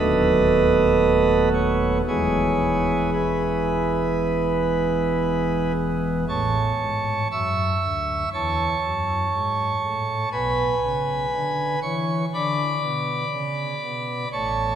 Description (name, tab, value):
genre	classical, chorale-style piece for pipe organ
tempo	59 BPM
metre	4/4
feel	uneven beats, rubato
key	A major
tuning	A4 = 440 Hz
part	pipe organ, sparkling flutes	solo	0.0-14.8 s	D#1 to E6	-20 LUFS	right 1 dB	none
room	wet church reverb, RT60 3.1 s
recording	none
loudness	-20 LUFS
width	side -9 dB against mid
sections	0.0-6.3 A section; 6.3-14.8 B section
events	none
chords	0.0 B7/D#; 2.1 E; 6.3 A; 10.3 G#dim/B